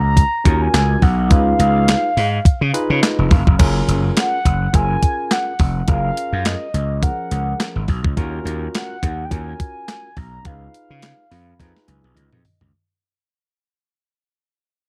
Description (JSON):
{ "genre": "early-eighties boogie funk", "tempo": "105 BPM", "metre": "4/4", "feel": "swing 56% on 16ths", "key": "F# major", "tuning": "A4 = 440 Hz", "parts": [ { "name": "mellow horn-like synth lead", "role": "melody", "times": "0.0-12.2 s", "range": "D#5 to A#5", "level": "-25 LUFS", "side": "equal", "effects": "chorus, slapback echo" }, { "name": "gritty slap bass", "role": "bass", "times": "0.0-12.7 s", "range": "E#1 to C#3", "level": "-21 LUFS", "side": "equal", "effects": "overdrive, tube saturation" }, { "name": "clean 12-bit digital drum machine", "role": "drums", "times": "0.2-12.7 s", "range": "crash cymbal, handclaps, hi-hat, kick drum, snare drum, toms", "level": "-18 LUFS", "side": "equal", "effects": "none" }, { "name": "barky tine electric piano", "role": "accompaniment", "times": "0.4-12.7 s", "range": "E#3 to B5", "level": "-28 LUFS", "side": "equal", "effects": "overdrive" } ], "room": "little or no reverb", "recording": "dark, warm production", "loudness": "-18 LUFS", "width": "mono", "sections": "0.0-3.6 A section; 3.6-12.7 B section", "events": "tine electric piano fill 2.7-3.6, 11.0-12.7; fade-out 3.6-12.7; drum fill 11.6-12.7", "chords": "0.0 D#m7; 1.3 C#9; 3.6 F#maj7; 8.2 D#m7; 10.5 C#9" }